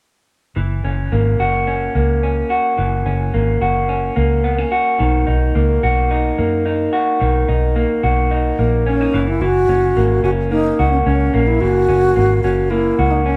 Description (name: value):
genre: jangly indie pop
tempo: 109 BPM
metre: 4/4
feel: straight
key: unclear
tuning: A4 = 440 Hz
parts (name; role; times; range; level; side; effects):
- electric guitar through a small old amp; arpeggios; 0.6-13.4 s; D#3 to F#4; -20 LUFS; equal; none
- vintage muted fingered electric bass; bass; 0.6-13.4 s; F#1 to F#2; -20 LUFS; equal; none
- alto flute; melody; 8.9-13.4 s; C#4 to F#4; -19 LUFS; equal; none
room: moderate small room reverb, RT60 0.6 s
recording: band playing live in one room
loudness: -17 LUFS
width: mono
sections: 0.6-9.4 A section; 9.4-13.4 B section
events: none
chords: 0.6 F#7; 5.0 Bmaj7; 9.1 F#5; 9.4 F#7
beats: | 0.57 1.12 1.68 2.23 | 2.79 3.34 3.89 4.45 | 5.00 5.55 6.11 6.66 | 7.21 7.76 8.31 8.86 | 9.41 9.96 10.51 11.06 | 11.61 12.16 12.71 13.26